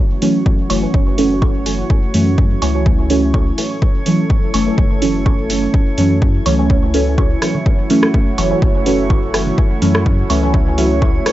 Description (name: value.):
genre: dub techno.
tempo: 125 BPM.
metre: 4/4.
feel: swing 53% on 16ths.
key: F# minor.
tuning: A4 = 441 Hz.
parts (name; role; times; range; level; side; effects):
dark analog pad; sustained chords; 0.1-11.3 s; A3 to B4; -25 LUFS; equal; chorus, sidechain pumping.
drifting glass-harmonics texture; texture; 0.2-11.3 s; C#5; -29 LUFS; right 3 dB; chorus, built-in reverb, sidechain pumping.
deep mellow chord stab; stabs; 0.2-11.3 s; E3 to C#4; -17 LUFS; right 1 dB; chorus, phaser, sidechain pumping, dub echo.
punchy analog drum machine; drums; 0.2-11.3 s; hi-hat, rim click; -23 LUFS; right 1 dB; none.
electronic kick drum; drums; 0.5-11.1 s; none; -14 LUFS; equal; none.
soft dub sub bass; bass; 0.7-11.2 s; F#1 to F#2; -19 LUFS; equal; sidechain pumping.
electronic woodblock and toms; percussion; 0.7-11.1 s; none; -28 LUFS; right 2 dB; sidechain pumping on perc, sidechain pumping on toms, dub echo.
room: little or no reverb.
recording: dry, gritty hardware recording, cassette tape, nothing above 7.7 kHz.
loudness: -12 LUFS.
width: side -14 dB against mid.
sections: 0.0-11.3 A section.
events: none.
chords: 0.0 F#m7.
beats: 0.46 0.94 | 1.42 1.90 2.38 2.86 | 3.34 3.82 4.30 4.78 | 5.26 5.74 6.22 6.70 | 7.18 7.66 8.14 8.62 | 9.10 9.58 10.06 10.54 | 11.02.